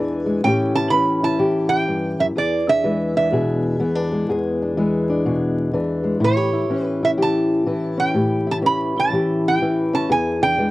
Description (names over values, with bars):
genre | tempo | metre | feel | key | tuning
acoustic country blues, solo or duo | 124 BPM | 4/4 | swing 65% on 8ths | unclear | A4 = 438 Hz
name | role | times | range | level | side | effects
lap resonator guitar | melody | 0.0-10.7 s | C#5 to B5 | -20 LUFS | right 3 dB | none
fingerpicked old ladder-braced acoustic guitar | accompaniment | 0.0-10.7 s | E2 to G#4 | -19 LUFS | left 1 dB | none
room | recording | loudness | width
little or no reverb | dry, close 1970s-style studio recording, vinyl crackle | -17 LUFS | side -17 dB against mid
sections
0.0-10.7 A section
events
none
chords
0.4 A7; 2.4 E7; 6.2 A7; 10.1 E7